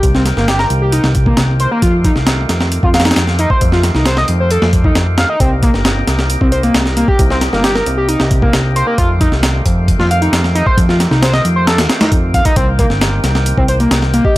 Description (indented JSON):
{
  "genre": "breakbeat, breaks",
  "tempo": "134 BPM",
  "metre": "4/4",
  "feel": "straight",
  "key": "C dorian",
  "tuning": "A4 = 441 Hz",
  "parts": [
    { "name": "tonewheel organ", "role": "sustained chords", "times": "0.0-14.4 s", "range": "C3 to G4", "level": "-22 LUFS", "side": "equal", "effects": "overdrive, slow rotary speaker, sidechain pumping" },
    { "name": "fat analog bass", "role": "bass", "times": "0.0-14.2 s", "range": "G1 to F2", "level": "-15 LUFS", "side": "equal", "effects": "none" },
    { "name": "breakbeat sampler-style drum kit", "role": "drums", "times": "0.0-14.4 s", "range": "hi-hat, kick drum, snare drum", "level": "-14 LUFS", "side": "equal", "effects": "small room ambience" },
    { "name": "overdriven synth lead", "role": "riff", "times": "0.1-14.3 s", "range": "Bb3 to F5", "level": "-16 LUFS", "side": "equal", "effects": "distortion, digital delay" },
    { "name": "vibraphone with soft mallets", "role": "melody", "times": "14.2-14.3 s", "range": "Eb5", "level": "-15 LUFS", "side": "left 1 dB", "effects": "AM radio sound" }
  ],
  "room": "light reverb",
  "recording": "vinyl crackle",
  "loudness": "-10 LUFS",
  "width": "side -17 dB against mid",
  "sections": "0.0-14.4 A section",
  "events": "none",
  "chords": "0.0 Cm7; 1.8 F9; 5.4 Cm7; 9.0 F9; 12.6 Cm7"
}